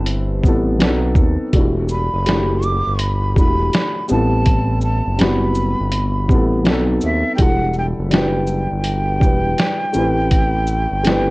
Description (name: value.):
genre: lo-fi hip hop.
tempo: 82 BPM.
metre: 4/4.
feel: swing 62% on 16ths.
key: E minor.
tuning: A4 = 441 Hz.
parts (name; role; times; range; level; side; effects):
breathy jazz flute; melody; 0.0-11.3 s; E5 to D6; -22 LUFS; right 1 dB; low-pass filter.
felt-muted upright piano; accompaniment; 0.0-11.3 s; F#3 to C5; -20 LUFS; left 1 dB; cassette tape, low-pass filter.
smooth synth bass; bass; 0.0-11.3 s; E1 to D#2; -20 LUFS; equal; none.
lo-fi sampler-style drum kit; drums; 0.1-11.3 s; hi-hat, kick drum, shaker, snare drum; -17 LUFS; equal; none.
room: light reverb.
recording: worn, warbling old tape, cassette tape, warbly pitch drift.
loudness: -14 LUFS.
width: side -22 dB against mid.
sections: 0.0-11.3 A section.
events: none.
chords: 0.0 Am9; 0.8 B7b9; 1.5 Em11; 4.1 Am9; 6.7 B7b9; 7.4 Em11; 9.9 Am9.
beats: 0.07 0.80 | 1.53 2.27 3.00 3.73 | 4.46 5.19 5.92 6.66 | 7.39 8.12 8.85 9.58 | 10.32 11.05.